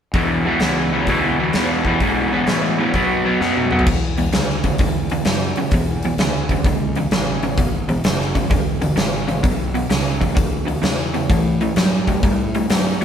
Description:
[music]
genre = blues rock power trio and southern rock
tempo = 129 BPM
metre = 4/4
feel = swing 67% on 8ths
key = E mixolydian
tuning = A4 = 440 Hz
[part]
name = crunchy overdriven guitar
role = riff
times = 0.1-13.0 s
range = E2 to B3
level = -19 LUFS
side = equal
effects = none
[part]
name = fuzz fingered electric bass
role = bass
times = 0.1-13.0 s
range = E1 to B2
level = -25 LUFS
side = equal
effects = overdrive
[part]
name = huge arena drum kit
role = drums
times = 0.1-13.0 s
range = crash cymbal, hi-hat, kick drum, snare drum, toms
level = -20 LUFS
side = equal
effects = none
[sound]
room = moderate stone room reverb, RT60 1.0 s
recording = band playing live in one room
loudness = -16 LUFS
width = side -8 dB against mid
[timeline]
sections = 0.1-3.9 A section; 3.9-13.0 B section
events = drum fill 3.4-3.9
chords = 0.1 E7; 2.9 B5; 3.9 E7; 11.3 A7(no3)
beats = | 0.15 0.61 1.08 1.55 | 2.02 2.48 2.95 3.41 | 3.88 4.34 4.81 5.27 | 5.73 6.20 6.66 7.13 | 7.59 8.06 8.52 8.99 | 9.45 9.92 10.38 10.85 | 11.31 11.78 12.24 12.71

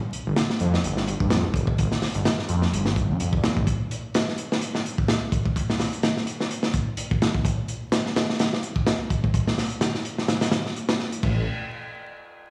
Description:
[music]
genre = breakbeat, breaks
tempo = 127 BPM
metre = 4/4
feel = swing 56% on 16ths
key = unclear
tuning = A4 = 443 Hz
[part]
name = crunchy breakbeat drum kit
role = drums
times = 0.1-11.3 s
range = crash cymbal, hi-hat, kick drum, snare drum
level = -26 LUFS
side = equal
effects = none
[part]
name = phased detuned saw bass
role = bass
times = 0.3-3.6, 11.2-11.5 s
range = F1 to G2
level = -27 LUFS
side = equal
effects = phaser
[sound]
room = moderate lush hall reverb, RT60 1.9 s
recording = played on a big sound system in a bare room, large studio reverb, vinyl crackle, studio reverb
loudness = -25 LUFS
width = mono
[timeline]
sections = 0.0-11.2 A section; 11.2-12.5 B section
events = none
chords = none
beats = 0.36 0.84 1.31 | 1.78 2.25 2.73 3.20 | 3.67 4.14 4.62 5.09 | 5.56 6.03 6.51 6.98 | 7.45 7.92 8.40 8.87 | 9.34 9.81 10.29 10.76 | 11.23

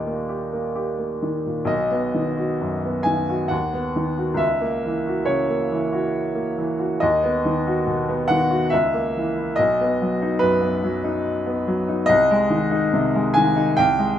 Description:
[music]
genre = classical, romantic character piece for solo piano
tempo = 62-72 BPM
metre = 3/4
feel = rubato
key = B major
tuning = A4 = 440 Hz
[part]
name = clear upright piano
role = solo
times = 0.0-14.2 s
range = B1 to G#5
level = -19 LUFS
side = equal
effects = none
[sound]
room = light reverb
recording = none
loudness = -19 LUFS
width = side -10 dB against mid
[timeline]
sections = 0.0-1.7 A section; 1.7-14.2 B section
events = none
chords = 0.0 Eb; 1.7 B; 3.5 B/D#; 4.4 F#7/C#; 7.0 B/D#; 8.7 A#dim/C#; 9.6 B; 12.1 Ab/C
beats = 0.77 | 1.71 2.62 3.52 | 4.41 5.30 6.17 | 7.02 7.87 8.72 | 9.58 10.43 11.26 | 12.10 12.95 13.78

